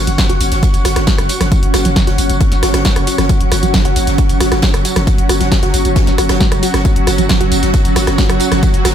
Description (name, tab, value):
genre	driving peak-time techno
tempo	135 BPM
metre	4/4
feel	straight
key	unclear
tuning	A4 = 442 Hz
part	tight sequenced synth	riff	0.0-8.9 s	F#3 to F#4	-21 LUFS	right 2 dB	chorus, tube saturation, sidechain pumping, digital delay
part	growling 808-style bass	bass	0.0-8.9 s	F#1	-18 LUFS	equal	tube saturation, sidechain pumping, low-pass filter
part	swarming drone	drone	0.9-8.9 s	F#3 to F#4	-22 LUFS	right 1 dB	built-in reverb, sidechain pumping
part	granular cloud pad	texture	0.0-8.9 s	C#4 to C#6	-19 LUFS	right 1 dB	built-in reverb, sidechain pumping
part	punchy analog drum machine	drums	0.1-8.9 s	hi-hat, rim click, snare drum, tambourine	-19 LUFS	equal	sidechain pumping on hats, sidechain pumping on cymbals, sidechain pumping on perc
part	electronic kick drum	drums	0.2-8.7 s	none	-14 LUFS	equal	none
part	huge arena drum kit	drums	0.2-8.9 s	ride cymbal, snare drum	-26 LUFS	right 1 dB	sidechain pumping on cymbals, high-pass filter on cymbals, high-pass filter on snare, high-pass filter on room
room	light reverb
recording	none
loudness	-10 LUFS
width	side -9 dB against mid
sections	0.0-8.9 A section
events	filter sweep on synth arpeggio sound 0.0-8.9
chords	0.0 F#5